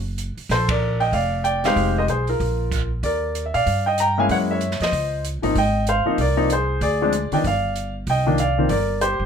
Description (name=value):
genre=jazz piano trio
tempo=190 BPM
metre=4/4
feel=swing 61% on 8ths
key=Bb major, Eb major from 3.0 s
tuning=A4 = 439 Hz
part: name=upright bass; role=bass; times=0.0-9.3 s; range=F1 to Bb2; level=-24 LUFS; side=right 1 dB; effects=none
part: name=open jazz drum kit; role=drums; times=0.2-9.1 s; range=crash cymbal, hi-hat, kick drum, ride cymbal, snare drum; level=-30 LUFS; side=right 3 dB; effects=none
part: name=warm grand piano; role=melody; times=0.5-9.3 s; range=Eb3 to Bb5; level=-20 LUFS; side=left 1 dB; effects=none
room=light reverb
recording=none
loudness=-18 LUFS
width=side -7 dB against mid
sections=0.0-3.0 A section; 3.0-9.3 B section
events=band accent 0.7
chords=0.0 N.C.; 0.5 Bbadd9; 1.8 Fm7; 2.4 Bb5; 3.0 Ebmaj7; 4.3 Gb9; 5.6 Ab69; 6.8 Ddim; 7.4 G5; 8.1 Cm11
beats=0.18 | 0.50 0.82 1.13 1.45 | 1.77 2.08 2.40 2.71 | 3.03 3.35 3.66 3.98 | 4.29 4.61 4.92 5.24 | 5.55 5.87 6.18 6.50 | 6.81 7.12 7.44 7.75 | 8.07 8.38 8.70 9.01